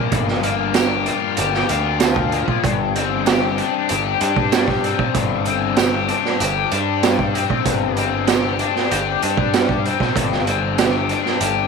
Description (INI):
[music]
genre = psychedelic rock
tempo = 96 BPM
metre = 4/4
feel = straight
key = unclear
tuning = A4 = 440 Hz
[part]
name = bright tonewheel organ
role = sustained chords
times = 0.0-11.7 s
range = Bb4 to G5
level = -32 LUFS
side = right 12 dB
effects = slow rotary speaker, overdrive, chorus vibrato
[part]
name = crunchy overdriven guitar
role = riff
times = 0.0-11.7 s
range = G2 to G4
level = -20 LUFS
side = left 14 dB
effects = flanger
[part]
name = fuzz picked electric bass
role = bass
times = 0.1-11.6 s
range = G1 to G2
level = -25 LUFS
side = right 1 dB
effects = overdrive
[part]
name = raw garage drum kit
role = drums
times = 0.1-11.6 s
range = hi-hat, kick drum, snare drum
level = -20 LUFS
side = right 7 dB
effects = none
[part]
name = tambourine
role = percussion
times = 0.8-10.9 s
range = none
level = -32 LUFS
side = right 18 dB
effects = none
[sound]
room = light reverb, studio reverb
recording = 1960s-style stereo with parts hard left and right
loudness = -16 LUFS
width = side -5 dB against mid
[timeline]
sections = 0.0-11.7 A section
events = none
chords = 0.0 Gm7; 2.6 Csus2/G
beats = | 0.13 0.75 1.38 2.01 | 2.64 3.26 3.89 4.52 | 5.15 5.78 6.40 7.03 | 7.66 8.28 8.91 9.53 | 10.16 10.78 11.41